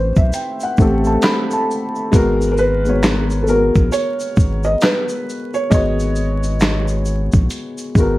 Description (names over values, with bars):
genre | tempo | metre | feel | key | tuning
lo-fi hip hop | 67 BPM | 4/4 | swing 61% on 16ths | unclear | A4 = 440 Hz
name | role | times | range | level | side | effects
dark upright piano | accompaniment | 0.0-8.2 s | G#3 to B5 | -19 LUFS | left 1 dB | cassette tape
saturated sub bass | bass | 0.0-8.2 s | G#1 to B1 | -19 LUFS | equal | none
dusty soul sampler-style drum kit | drums | 0.2-8.2 s | handclaps, hi-hat, kick drum, shaker, snare drum | -16 LUFS | equal | none
tube shaker | percussion | 0.2-8.2 s | none | -40 LUFS | right 5 dB | none
felt-muted upright piano | melody | 2.5-8.2 s | A4 to D#5 | -20 LUFS | right 1 dB | none
room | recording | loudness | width
light reverb | vinyl crackle | -14 LUFS | side -17 dB against mid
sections
0.0-8.2 A section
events
none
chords
0.0 Am9; 2.1 G#m9